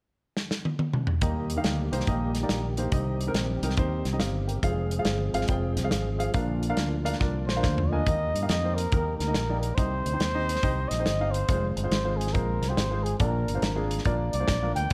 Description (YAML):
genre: uptempo gospel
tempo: 140 BPM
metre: 4/4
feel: swing 65% on 8ths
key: Eb major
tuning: A4 = 440 Hz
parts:
  - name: modern studio drum kit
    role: drums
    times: 0.4-14.9 s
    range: hi-hat, kick drum, snare drum, toms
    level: -32 LUFS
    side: equal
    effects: none
  - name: dark baby grand piano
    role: accompaniment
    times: 1.2-14.8 s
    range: Bb2 to Ab5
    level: -34 LUFS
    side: equal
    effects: none
  - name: tonewheel organ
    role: sustained chords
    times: 1.2-8.0 s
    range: D3 to Ab4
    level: -37 LUFS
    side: equal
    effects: slow rotary speaker, chorus vibrato
  - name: fingered electric bass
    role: bass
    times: 1.2-14.9 s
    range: F1 to G2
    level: -32 LUFS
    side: equal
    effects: none
  - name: breathy trumpet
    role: melody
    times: 7.5-14.9 s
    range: Ab4 to G5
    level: -33 LUFS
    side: equal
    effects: none
room: light reverb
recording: none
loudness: -27 LUFS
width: mono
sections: 0.0-1.2 A section; 1.2-8.1 B section; 8.1-14.9 C section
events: drum fill 0.4-1.2, 7.2-8.1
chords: 0.0 N.C.; 1.2 Eb; 2.9 Cm; 4.6 Fm; 6.3 Bb; 8.1 Eb; 9.8 Cm; 11.5 Fm; 13.2 Bb